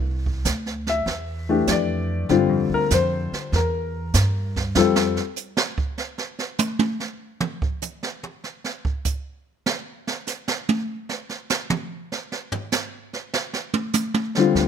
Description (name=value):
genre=jazz piano trio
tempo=98 BPM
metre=4/4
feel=swing 69% on 8ths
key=C mixolydian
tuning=A4 = 440 Hz
part: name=upright bass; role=bass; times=0.0-5.2, 14.6-14.7 s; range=C2 to G2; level=-24 LUFS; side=right 1 dB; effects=none
part: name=jazz brush drum kit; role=drums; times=0.3-14.7 s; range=brushed snare drum, hi-hat, kick drum, snare drum, toms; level=-24 LUFS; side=right 4 dB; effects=none
part: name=warm grand piano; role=melody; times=0.9-5.2, 14.4-14.7 s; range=D3 to E5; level=-20 LUFS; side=left 6 dB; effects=none
room=light reverb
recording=minimal, uncompressed stereo recording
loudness=-22 LUFS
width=side -8 dB against mid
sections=0.0-14.7 A section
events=grand piano solo 0.0-14.7; drum solo 4.8-14.6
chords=0.0 C69; 2.3 G5; 3.5 Edim; 4.8 N.C.